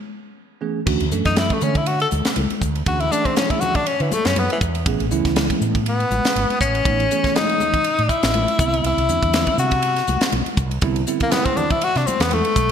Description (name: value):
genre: electric jazz fusion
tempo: 121 BPM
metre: 4/4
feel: swing 56% on 16ths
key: unclear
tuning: A4 = 441 Hz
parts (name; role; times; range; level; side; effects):
- bell-like tine electric piano; accompaniment; 0.6-11.7 s; D3 to A4; -25 LUFS; right 6 dB; lush chorus
- fretless electric bass; bass; 0.9-12.7 s; G#1 to D3; -23 LUFS; right 1 dB; none
- crisp fusion drum kit; drums; 0.9-12.7 s; crash cymbal, hi-hat, kick drum, ride cymbal, snare drum; -23 LUFS; equal; gated reverb
- congas; percussion; 0.9-12.6 s; none; -29 LUFS; left 4 dB; none
- bright tenor saxophone; melody; 1.3-12.7 s; E3 to A4; -20 LUFS; left 3 dB; none
room: moderate lush hall reverb, RT60 1.6 s, small room ambience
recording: bright 1980s-style digital production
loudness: -17 LUFS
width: side -8 dB against mid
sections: 0.9-12.7 A section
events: break 0.0-0.9; tenor saxophone solo 0.9-12.7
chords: 0.0 Amaj9; 0.9 Dmaj9; 4.9 Amaj9; 8.6 Cmaj9